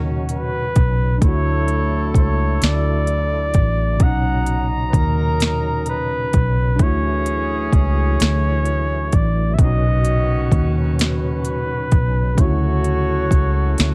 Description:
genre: slow six-eight R&B.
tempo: 43 BPM (dotted quarters).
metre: 6/8.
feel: straight.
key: B major.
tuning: A4 = 439 Hz.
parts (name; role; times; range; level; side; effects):
mellow flugelhorn; melody; 0.0-13.9 s; A#4 to F#5; -27 LUFS; equal; plate reverb.
tine electric piano; accompaniment; 0.0-13.9 s; A#2 to F#4; -28 LUFS; equal; overdrive.
tonewheel organ; sustained chords; 0.0-13.9 s; C#3 to B4; -33 LUFS; equal; chorus vibrato, slow rotary speaker.
mellow horn section; stabs; 0.0-13.9 s; C#3 to A#5; -31 LUFS; equal; plate reverb.
vintage muted fingered electric bass; bass; 0.0-13.9 s; A1 to D#2; -22 LUFS; equal; none.
smooth R&B drum kit; drums; 0.3-13.9 s; hi-hat, kick drum, snare drum; -19 LUFS; equal; overdrive.
room: light reverb.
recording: none.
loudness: -18 LUFS.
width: mono.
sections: 0.0-13.9 A section.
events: none.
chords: 0.0 Bmaj9; 1.2 Dmaj9; 4.0 Bmaj9; 6.8 Dmaj9; 9.6 Bmaj9; 12.4 Dmaj9.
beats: | 1.22 2.61 | 4.01 5.40 | 6.80 8.20 | 9.59 10.98 | 12.38 13.78.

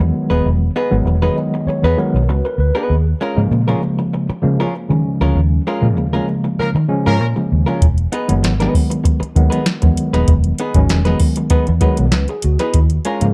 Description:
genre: funk.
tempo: 98 BPM.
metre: 4/4.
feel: straight.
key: unclear.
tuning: A4 = 440 Hz.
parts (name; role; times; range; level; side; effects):
vintage hollow-body jazz guitar; accompaniment; 0.0-13.3 s; Ab3 to B4; -24 LUFS; equal; none.
mellow tine electric piano; stabs; 0.0-13.3 s; Db3 to D#5; -21 LUFS; equal; tape echo.
vintage muted fingered electric bass; bass; 0.0-13.3 s; D#1 to Eb3; -18 LUFS; equal; none.
mellow horn section; second line; 6.6-7.3 s; F3 to Bb4; -23 LUFS; equal; none.
soft vintage rhythm box; drums; 7.8-13.3 s; hi-hat, kick drum, snare drum; -18 LUFS; equal; none.
room: light reverb.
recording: dark, warm production.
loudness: -16 LUFS.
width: mono.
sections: 0.0-13.3 A section.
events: tine electric piano fill 1.1-2.9; band accent 5.4-7.8.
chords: 0.0 Emaj7; 2.9 Eb9sus4; 7.8 Emaj7; 12.7 Eb9sus4.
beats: | 0.44 1.06 1.67 2.29 | 2.90 3.51 4.13 4.74 | 5.36 5.97 6.59 7.20 | 7.82 8.43 9.05 9.66 | 10.28 10.90 11.51 12.13 | 12.75.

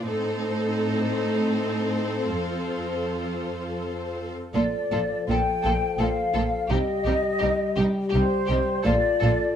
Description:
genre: cinematic, emotional film score for orchestra.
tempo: 82 BPM.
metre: 3/4.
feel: rubato.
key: Bb major from 4.6 s.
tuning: A4 = 438 Hz.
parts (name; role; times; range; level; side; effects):
rich studio violin section; second line; 0.0-9.3 s; Eb4 to C5; -31 LUFS; equal; none.
rich studio viola section; accompaniment; 0.0-9.3 s; G3 to F4; -31 LUFS; equal; none.
warm studio cello section; bass; 0.0-9.3 s; F2 to C3; -30 LUFS; right 2 dB; none.
large flute ensemble; second line; 4.5-9.6 s; C5 to G5; -25 LUFS; left 1 dB; none.
dark French horn section; sustained chords; 4.5-9.6 s; F3 to A4; -28 LUFS; left 4 dB; none.
warm studio double bass section; bass; 4.5-9.3 s; Bb1 to C2; -28 LUFS; right 2 dB; none.
rich studio violin section; melody; 4.6-9.3 s; G4 to A4; -35 LUFS; left 2 dB; none.
room: light reverb.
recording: close, detailed microphones.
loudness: -22 LUFS.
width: side -9 dB against mid.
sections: 0.0-4.6 A section; 4.6-9.6 B section.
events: none.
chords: 0.1 Adim; 2.3 F; 4.6 Bbmaj7; 6.7 Cm; 8.9 Bbmaj7.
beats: | 0.09 0.81 1.54 | 2.29 3.06 3.81 | 4.55 5.29 6.01 | 6.71 7.43 8.14 | 8.85.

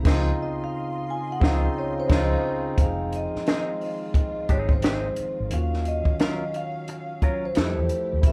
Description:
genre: R&B, neo-soul.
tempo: 88 BPM.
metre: 4/4.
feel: swing 63% on 16ths.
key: unclear.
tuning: A4 = 440 Hz.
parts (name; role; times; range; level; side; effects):
barky tine electric piano; accompaniment; 0.0-8.3 s; Db3 to C5; -33 LUFS; equal; none.
warm chamber string section; sustained chords; 0.0-8.3 s; B2 to C6; -41 LUFS; equal; none.
vintage muted fingered electric bass; bass; 0.0-8.3 s; F1 to F2; -30 LUFS; equal; none.
compact cocktail drum kit; drums; 0.0-8.3 s; crash cymbal, hi-hat, kick drum, snare drum; -24 LUFS; equal; none.
semi-hollow electric guitar; second line; 0.1-7.8 s; F3 to Bb4; -36 LUFS; equal; none.
vibraphone with soft mallets; melody; 0.4-8.3 s; C5 to Ab5; -32 LUFS; equal; none.
room: light reverb.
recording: band playing live in one room.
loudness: -25 LUFS.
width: mono.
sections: 0.0-2.8 A section; 2.8-8.3 B section.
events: band accent 0.1-2.8.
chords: 0.1 Dbmaj9; 2.8 Fm7; 5.5 Ebm9; 7.5 Fmaj9#11.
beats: | 0.05 0.73 1.41 2.10 | 2.78 3.46 4.14 4.82 | 5.50 6.19 6.87 7.55 | 8.23.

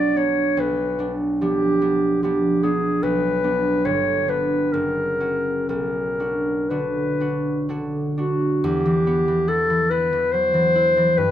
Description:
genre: classical, romantic duo for clarinet and harp.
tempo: 60-75 BPM.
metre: 3/4.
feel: rubato.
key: B minor.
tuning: A4 = 440 Hz.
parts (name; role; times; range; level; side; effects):
mellow clarinet; melody; 0.0-11.3 s; F#4 to D5; -21 LUFS; left 1 dB; none.
concert harp; accompaniment; 0.0-11.3 s; F#1 to F#4; -22 LUFS; equal; none.
room: light reverb.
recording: close, detailed microphones.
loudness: -19 LUFS.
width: side -11 dB against mid.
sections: 0.0-8.6 A section; 8.6-11.3 B section.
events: none.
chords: 0.0 Bm; 0.6 Bdim; 3.0 Bm; 3.9 G; 4.7 F#; 5.7 Bm; 8.6 Em.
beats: | 0.58 1.41 2.23 | 3.04 3.86 4.74 | 5.69 6.69 7.69 | 8.64 9.49 10.32 | 11.17.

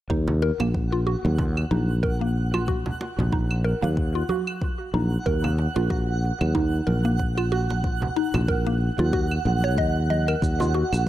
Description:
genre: organic downtempo.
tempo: 93 BPM.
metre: 4/4.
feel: swing 56% on 16ths.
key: Eb minor.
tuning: A4 = 440 Hz.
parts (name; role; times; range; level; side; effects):
mallet-like synth pluck; arpeggios; 0.1-10.8 s; Bb3 to Eb5; -28 LUFS; equal; chorus, phaser, analog delay.
sustaining fretless electric bass; bass; 0.1-11.1 s; Bb1 to Eb2; -23 LUFS; equal; sidechain pumping.
electronic kick drum; drums; 0.1-11.1 s; none; -28 LUFS; equal; small room ambience.
twinkling granular texture; texture; 0.6-11.1 s; Gb5; -33 LUFS; right 5 dB; built-in reverb.
congas and bongos; percussion; 0.3-11.0 s; none; -32 LUFS; right 2 dB; none.
claves and shaker; drums; 0.6-11.0 s; none; -33 LUFS; right 3 dB; small room ambience.
room: little or no reverb.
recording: dry, gritty hardware recording.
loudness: -21 LUFS.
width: side -13 dB against mid.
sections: 0.1-11.1 A section.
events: none.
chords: 0.1 Ebm; 5.3 Dbsus4 (rootless); 10.4 Ebmadd9.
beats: | 0.10 0.75 1.39 2.04 | 2.68 3.33 3.97 4.62 | 5.26 5.91 6.55 7.20 | 7.84 8.49 9.13 9.78 | 10.42 11.07.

